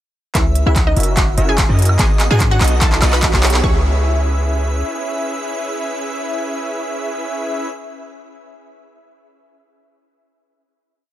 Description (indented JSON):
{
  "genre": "future bass",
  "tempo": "146 BPM",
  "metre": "4/4",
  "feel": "half-time",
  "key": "C# minor",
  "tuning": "A4 = 440 Hz",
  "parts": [
    { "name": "airy dreamy lead", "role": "arpeggios", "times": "0.3-7.7 s", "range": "C#5 to F#5", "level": "-27 LUFS", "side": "left 1 dB", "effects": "chorus, sidechain pumping" },
    { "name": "supersaw stab", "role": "riff", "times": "0.3-7.7 s", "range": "B3 to F#5", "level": "-24 LUFS", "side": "right 1 dB", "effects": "sidechain pumping, low-pass filter" },
    { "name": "warm 808-style bass", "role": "bass", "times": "0.3-4.8 s", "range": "F#1 to G#2", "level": "-16 LUFS", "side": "equal", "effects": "sidechain pumping" },
    { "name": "big-room dance drum kit", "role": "drums", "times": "0.3-3.6 s", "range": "handclaps, hi-hat, woodblock", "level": "-20 LUFS", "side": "right 1 dB", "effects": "none" },
    { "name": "electronic kick drum", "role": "drums", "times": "0.3-3.7 s", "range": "none", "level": "-18 LUFS", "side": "equal", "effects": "none" },
    { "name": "riser", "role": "sound effects", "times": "1.7-3.6 s", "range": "none", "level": "-29 LUFS", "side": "right 2 dB", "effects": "none" },
    { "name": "wide unison pluck", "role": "melody", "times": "0.4-8.0 s", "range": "D#4 to C#6", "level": "-24 LUFS", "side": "equal", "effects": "sidechain pumping, digital delay" }
  ],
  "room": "light reverb, digital ambience",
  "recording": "none",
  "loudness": "-14 LUFS",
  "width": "side -13 dB against mid",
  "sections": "0.3-3.6 build; 3.6-6.9 final chord",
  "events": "build-up 0.3-3.6; drum fill 0.3-3.6; filter sweep on supersaw synth 0.3-3.6; riser 1.7-3.6",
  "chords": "0.3 C#m7; 1.0 F#7; 2.0 G#m7; 2.8 B7; 3.6 C#m7"
}